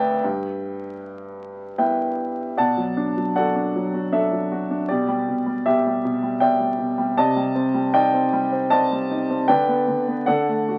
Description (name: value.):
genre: classical, lyrical solo piano.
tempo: 78 BPM.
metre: 3/4.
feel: rubato.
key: unclear.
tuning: A4 = 441 Hz.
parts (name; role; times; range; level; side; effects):
warm concert grand piano; solo; 0.0-10.8 s; D2 to A5; -22 LUFS; equal; none.
room: moderate small room reverb, RT60 0.5 s.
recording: very old 78 rpm record, vinyl crackle.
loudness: -22 LUFS.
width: mono.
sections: 0.0-2.6 A section; 2.6-10.8 B section.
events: none.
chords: 0.2 G6; 2.6 Bm7; 4.9 Em7/B; 7.2 Cmadd9; 9.5 G/D; 10.3 D.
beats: | 0.23 0.99 1.78 | 2.57 3.36 4.12 | 4.88 5.64 6.41 | 7.16 7.93 8.70 | 9.48 10.27.